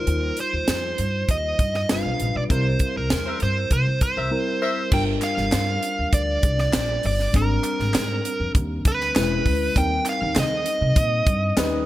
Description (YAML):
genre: polished 1980s jazz-funk pop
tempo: 99 BPM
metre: 4/4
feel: straight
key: Eb major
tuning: A4 = 440 Hz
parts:
  - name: dark smooth lead guitar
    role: melody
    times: 0.0-11.9 s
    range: Bb4 to G5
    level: -25 LUFS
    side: right 2 dB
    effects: overdrive
  - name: tine electric piano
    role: accompaniment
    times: 0.0-11.9 s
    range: G3 to Bb5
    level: -28 LUFS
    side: left 2 dB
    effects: lush chorus
  - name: upright bass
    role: bass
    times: 0.0-11.8 s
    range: E1 to Eb3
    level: -25 LUFS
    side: equal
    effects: none
  - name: tight funk drum kit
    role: drums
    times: 0.1-11.7 s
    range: crash cymbal, hi-hat, kick drum, snare drum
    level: -23 LUFS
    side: equal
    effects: gated reverb
  - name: mellow horn section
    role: second line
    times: 3.3-4.8 s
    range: Bb4 to E5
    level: -30 LUFS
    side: left 3 dB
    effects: digital delay
  - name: group handclap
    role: percussion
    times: 5.2-11.7 s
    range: none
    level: -38 LUFS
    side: left 3 dB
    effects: none
room: studio reverb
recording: bright 1980s-style digital production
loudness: -20 LUFS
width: side -15 dB against mid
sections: 0.0-4.9 A section; 4.9-11.9 B section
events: band accent 2.5-4.9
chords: 0.0 Eb69; 1.9 G7; 2.5 C7; 4.9 Gm7; 7.3 Abmaj9#11; 9.2 E6; 9.8 Eb6